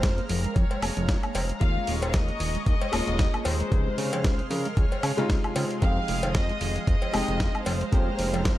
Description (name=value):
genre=nu-disco, nu disco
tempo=114 BPM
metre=4/4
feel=swing 56% on 16ths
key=unclear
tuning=A4 = 441 Hz
part: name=warm chamber violin section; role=melody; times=0.0-8.6 s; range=Bb4 to F5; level=-33 LUFS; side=left 1 dB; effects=tape echo
part: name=warm grand piano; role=accompaniment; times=0.0-8.6 s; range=C3 to Ab4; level=-34 LUFS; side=left 2 dB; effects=sidechain pumping
part: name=lush unison pad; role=sustained chords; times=0.0-8.6 s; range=Ab3 to F6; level=-36 LUFS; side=equal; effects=chorus, sidechain pumping
part: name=soft round pluck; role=arpeggios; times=0.0-8.5 s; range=Eb3 to C5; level=-36 LUFS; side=right 3 dB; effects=ensemble chorus, sidechain pumping, tape echo
part: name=fat analog bass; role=bass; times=0.0-8.6 s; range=Eb1 to Db3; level=-29 LUFS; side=equal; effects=none
part: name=dusty soul sampler-style drum kit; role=drums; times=0.0-8.6 s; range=hi-hat, snare drum, woodblock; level=-32 LUFS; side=equal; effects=studio reverb
part: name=electronic kick drum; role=drums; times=0.0-8.6 s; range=none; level=-24 LUFS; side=equal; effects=studio reverb
part: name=cowbell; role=percussion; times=0.7-8.4 s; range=none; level=-33 LUFS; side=left 1 dB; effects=none
room=little or no reverb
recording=lossy compression artefacts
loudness=-23 LUFS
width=side -14 dB against mid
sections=0.0-8.6 A section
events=none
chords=0.0 Bbm7/F; 1.6 Eb7sus4; 3.7 Dbmaj7; 5.8 Fm7; 7.7 Bbm7/F